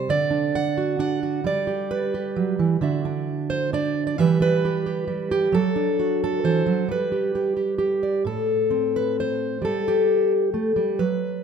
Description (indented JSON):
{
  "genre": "folk, solo fingerstyle acoustic guitar",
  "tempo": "132 BPM",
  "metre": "3/4",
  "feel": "straight",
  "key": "unclear",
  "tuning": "A4 = 442 Hz",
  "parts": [
    { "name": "fingerpicked plugged-in steel-string acoustic guitar", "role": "solo", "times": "0.0-11.4 s", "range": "A2 to F#5", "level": "-20 LUFS", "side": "right 2 dB", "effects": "none" }
  ],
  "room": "light reverb",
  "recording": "minimal, uncompressed stereo recording",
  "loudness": "-20 LUFS",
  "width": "side -7 dB against mid",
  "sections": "0.0-8.3 A section; 8.3-11.4 B section",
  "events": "none",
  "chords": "0.1 D; 1.5 G; 2.8 Dadd9; 4.2 Em; 5.5 D/F#; 6.9 G; 8.3 Am; 9.6 Gsus2",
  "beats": "| 0.09 0.55 1.00 | 1.45 1.91 2.36 | 2.82 3.27 3.73 | 4.18 4.63 5.08 | 5.54 5.99 6.44 | 6.89 7.34 7.79 | 8.25 8.71 9.17 | 9.62 10.08 10.54 | 10.99"
}